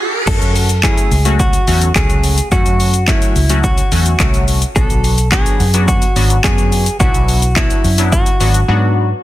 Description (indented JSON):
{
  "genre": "dance-pop",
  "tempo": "107 BPM",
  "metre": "4/4",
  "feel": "straight",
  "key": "B dorian",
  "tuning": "A4 = 437 Hz",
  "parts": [
    { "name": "direct-recorded clean electric guitar", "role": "melody", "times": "0.3-8.9 s", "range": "E4 to A4", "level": "-20 LUFS", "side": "equal", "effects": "ping-pong delay" },
    { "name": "funky polysynth comp", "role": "accompaniment", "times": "0.3-9.1 s", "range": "F#3 to F#4", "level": "-20 LUFS", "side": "left 3 dB", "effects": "chorus, sidechain pumping" },
    { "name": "vintage muted fingered electric bass", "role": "bass", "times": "0.3-9.1 s", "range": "G#1 to G#2", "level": "-15 LUFS", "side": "equal", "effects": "sidechain pumping" },
    { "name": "house drum kit", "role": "drums", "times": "0.3-8.7 s", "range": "crash cymbal, handclaps, hi-hat, kick drum, shaker", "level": "-15 LUFS", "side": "equal", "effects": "none" }
  ],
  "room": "digital ambience",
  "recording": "dense, heavily limited modern master",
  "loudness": "-11 LUFS",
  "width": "side -15 dB against mid",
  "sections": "0.3-9.2 A section",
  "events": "stop 0.0; silent gap 8.7-9.2",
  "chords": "0.3 F#m; 4.8 Bm"
}